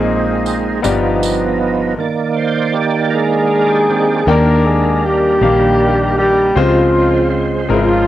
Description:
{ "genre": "slow gospel", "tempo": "52 BPM (dotted quarters)", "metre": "6/8", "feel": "straight", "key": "Eb major", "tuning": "A4 = 440 Hz", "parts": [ { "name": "clear concert grand piano", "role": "accompaniment", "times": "0.0-8.1 s", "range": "G2 to G5", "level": "-17 LUFS", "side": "left 5 dB", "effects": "cassette tape, plate reverb" }, { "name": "overdriven tonewheel organ", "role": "sustained chords", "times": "0.0-8.1 s", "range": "Db3 to D5", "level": "-17 LUFS", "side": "right 5 dB", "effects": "slow rotary speaker, chorus vibrato, cassette tape, plate reverb" }, { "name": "fingered electric bass", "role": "bass", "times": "0.0-8.1 s", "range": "G1 to Eb2", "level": "-19 LUFS", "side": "equal", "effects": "transformer saturation" }, { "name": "tambourine", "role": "percussion", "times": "0.5-1.6 s", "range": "none", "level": "-27 LUFS", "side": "right 9 dB", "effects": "none" }, { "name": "mellow horn section", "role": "melody", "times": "3.1-8.1 s", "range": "F3 to Bb4", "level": "-13 LUFS", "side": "equal", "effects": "cassette tape, plate reverb, analog delay" } ], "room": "wet booth ambience, RT60 0.2 s", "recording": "home recording on cassette", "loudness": "-12 LUFS", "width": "side -13 dB against mid", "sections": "0.0-4.3 A section; 4.3-8.1 B section", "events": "tonewheel organ solo 0.0-4.3", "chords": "0.0 Bb7sus4; 0.8 G7b13; 2.0 Cm9; 4.3 Ebmaj7; 6.6 Dbmaj7", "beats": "0.84 | 1.99 3.13 | 4.28 5.42 | 6.56 7.70" }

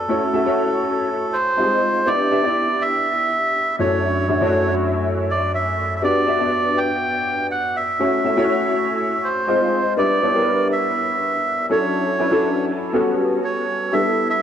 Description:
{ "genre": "pop", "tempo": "121 BPM", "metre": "4/4", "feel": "straight", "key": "D major", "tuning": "A4 = 440 Hz", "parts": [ { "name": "melodica", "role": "melody", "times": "0.0-14.4 s", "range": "A4 to G5", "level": "-20 LUFS", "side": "right 2 dB", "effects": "cassette tape" }, { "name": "warm grand piano", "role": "accompaniment", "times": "0.0-14.4 s", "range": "F#2 to E5", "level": "-20 LUFS", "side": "left 1 dB", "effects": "ensemble chorus, cassette tape" } ], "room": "moderate lush hall reverb, RT60 2.5 s", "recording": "home recording on cassette", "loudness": "-17 LUFS", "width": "side -9 dB against mid", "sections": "0.0-13.9 A section", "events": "none", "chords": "0.1 F#m7; 1.6 Fm7; 2.1 Em7; 3.8 Dmaj9/F#; 6.0 Gmaj7; 8.0 F#m7; 9.5 Fm7; 10.0 Em7; 11.7 Dmaj9/F#; 12.9 A13; 13.9 G69", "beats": "| 0.09 0.58 1.08 1.57 | 2.06 2.56 3.05 3.55 | 4.04 4.54 5.03 5.53 | 6.02 6.51 7.01 7.50 | 8.00 8.49 8.98 9.48 | 9.97 10.47 10.96 11.46 | 11.95 12.44 12.93 13.43 | 13.92 14.41" }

